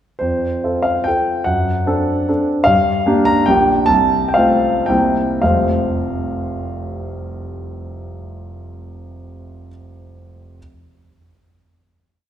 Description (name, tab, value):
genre	classical, romantic triple-time dance for piano with dotted rhythms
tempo	102-155 BPM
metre	3/4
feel	rubato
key	F major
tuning	A4 = 438 Hz
part	warm grand piano	solo	0.2-10.6 s	F1 to Bb5	-16 LUFS	equal	none
room	moderate concert hall reverb, RT60 2.2 s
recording	minimal, uncompressed stereo recording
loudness	-14 LUFS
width	side -10 dB against mid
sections	0.2-5.4 A section; 5.4-8.5 final chord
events	slowing down 2.1-5.4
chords	0.2 F; 1.5 D7/F#; 2.7 Gm7; 3.5 Gm/Bb; 3.9 F/C; 4.9 C7; 5.4 F